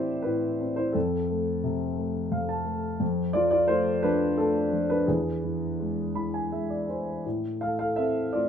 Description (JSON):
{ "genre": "classical, lyrical solo piano", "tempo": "86 BPM", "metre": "3/4", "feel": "uneven beats, rubato", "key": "A minor", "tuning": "A4 = 440 Hz", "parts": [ { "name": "dark grand piano", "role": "solo", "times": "0.0-8.5 s", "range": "E2 to B5", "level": "-25 LUFS", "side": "equal", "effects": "none" } ], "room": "moderate small room ambience, RT60 0.5 s", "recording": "none", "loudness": "-25 LUFS", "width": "side -8 dB against mid", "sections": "0.0-8.5 A section", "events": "grand piano fill 2.0-3.0, 5.8-7.2", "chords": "0.0 Am7; 1.0 F; 3.0 Dm/F; 5.1 E; 7.2 Am" }